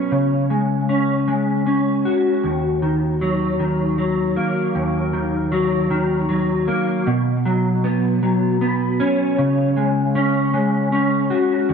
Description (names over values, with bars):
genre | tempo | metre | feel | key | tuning
rock | 78 BPM | 3/4 | straight | unclear | A4 = 440 Hz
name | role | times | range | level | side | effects
mellow electric guitar | solo | 0.0-11.7 s | Eb2 to Gb4 | -17 LUFS | equal | ensemble chorus, digital delay
room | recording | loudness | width
moderate concert hall reverb, RT60 2.5 s | none | -17 LUFS | side -6 dB against mid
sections
0.0-7.1 A section; 7.1-11.7 B section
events
none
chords
0.1 Dbsus4; 2.4 Ebm; 7.1 Bsus2; 9.4 Dbsus4